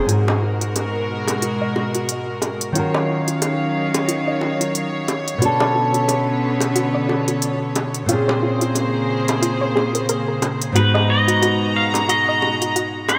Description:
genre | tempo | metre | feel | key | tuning
sunset chillout | 90 BPM | 4/4 | swing 57% on 16ths | G# dorian | A4 = 440 Hz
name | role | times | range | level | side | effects
nylon-string guitar | accompaniment | 0.0-13.2 s | G#2 to B4 | -24 LUFS | equal | low-pass filter, delay
dark studio string section | sustained chords | 0.0-13.2 s | B2 to A#5 | -26 LUFS | equal | none
soft round pluck | arpeggios | 0.1-12.9 s | E#4 to D#5 | -29 LUFS | equal | chorus, delay
electronic hi-hat | drums | 0.1-13.2 s | none | -27 LUFS | equal | none
bongos | percussion | 0.3-13.2 s | none | -29 LUFS | equal | none
pedal steel guitar | melody | 10.8-13.2 s | B4 to E#5 | -22 LUFS | equal | lush chorus, delay
room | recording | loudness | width
wet lush hall reverb, RT60 2.7 s | bright 1980s-style digital production | -20 LUFS | mono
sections
0.1-13.2 A section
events
filter sweep on synth arpeggio sound 0.1-13.2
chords
0.1 G#m9; 2.8 D#m9; 5.4 Bm9; 8.1 A#m9; 10.8 G#m9

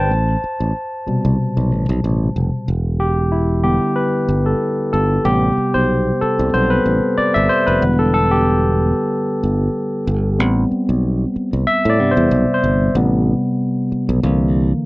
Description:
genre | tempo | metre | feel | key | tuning
lush 1970s-style soul | 93 BPM | 4/4 | swing 54% on 16ths | A minor | A4 = 440 Hz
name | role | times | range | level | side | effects
barky tine electric piano | accompaniment | 0.0-14.9 s | B2 to A5 | -16 LUFS | equal | overdrive
modern bright fingered electric bass | bass | 0.0-14.7 s | E1 to A2 | -17 LUFS | equal | none
room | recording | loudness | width
little or no reverb | dry, close 1970s-style studio recording | -15 LUFS | side -21 dB against mid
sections
0.0-2.7 A section; 2.7-13.0 B section; 13.0-14.9 C section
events
tine electric piano solo 0.0-2.7, 2.7-13.0, 13.0-14.9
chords
0.1 Am7; 2.7 Em7; 5.2 Am7; 7.8 Em7; 10.4 Am7; 14.2 C7

